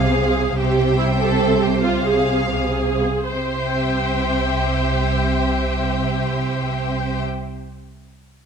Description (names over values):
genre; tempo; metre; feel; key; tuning
classical, dramatic, fast romantic movement for symphony orchestra; 75-102 BPM (dotted quarters); 6/8; straight; C major; A4 = 440 Hz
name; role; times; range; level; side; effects
warm symphonic violin section; melody; 0.0-7.2 s; F5 to G5; -29 LUFS; left 5 dB; none
warm symphonic violin section; second line; 0.0-7.2 s; G4 to F5; -27 LUFS; left 2 dB; none
warm symphonic viola section; accompaniment; 0.0-7.2 s; E4 to C5; -22 LUFS; right 2 dB; none
dark symphonic cello section; bass; 0.0-7.2 s; C3; -24 LUFS; right 2 dB; none
dark symphonic double bass section; bass; 0.0-7.2 s; C2; -23 LUFS; right 3 dB; none
room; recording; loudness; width
moderate recital hall reverb, RT60 1.6 s; none; -17 LUFS; side -6 dB against mid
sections
0.0-3.3 A section; 3.3-6.4 B section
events
slowing down 0.0-3.3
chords
0.0 Fm/C; 0.6 C; 1.8 Fm/C; 3.3 C